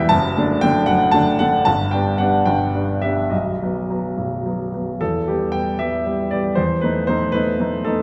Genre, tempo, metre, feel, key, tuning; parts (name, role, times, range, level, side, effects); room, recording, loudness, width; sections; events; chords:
classical, romantic character piece for solo piano; 68-79 BPM (dotted quarters); 6/8; rubato; E minor; A4 = 441 Hz
clear grand piano; solo; 0.0-8.0 s; B0 to A5; -19 LUFS; equal
wet recital hall reverb, RT60 1.6 s; heard from further back in the room; -19 LUFS; mono
0.0-5.0 A section; 5.0-8.0 B section
0.1 D/F#; 1.7 G; 3.3 B; 5.0 Em; 6.6 B7/E